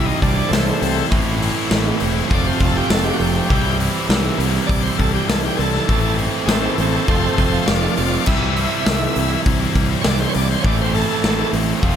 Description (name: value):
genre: classic rock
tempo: 101 BPM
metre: 4/4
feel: straight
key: unclear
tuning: A4 = 440 Hz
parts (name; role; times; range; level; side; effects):
- overdriven tonewheel organ; melody; 0.0-11.5 s; A3 to E5; -24 LUFS; equal; slow rotary speaker
- crunchy overdriven guitar; riff; 0.0-12.0 s; F2 to F4; -22 LUFS; right 8 dB; none
- tight distorted guitar; riff; 0.0-12.0 s; A2 to F4; -25 LUFS; left 10 dB; distortion
- growling fingered electric bass; bass; 0.0-12.0 s; E1 to C2; -22 LUFS; equal; overdrive
- big rock drum kit; drums; 0.2-12.0 s; crash cymbal, hi-hat, kick drum, snare drum; -20 LUFS; left 1 dB; none
room: light reverb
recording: none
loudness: -15 LUFS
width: side -9 dB against mid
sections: 0.0-12.0 A section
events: tonewheel organ solo 0.0-12.0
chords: 0.0 C; 1.1 Am; 2.3 F; 3.5 C; 5.9 Am; 7.1 F; 8.3 C; 10.6 Am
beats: 0.52 | 1.12 1.72 2.31 2.91 | 3.51 4.10 4.70 5.29 | 5.89 6.48 7.08 7.67 | 8.27 8.86 9.46 10.05 | 10.64 11.24 11.83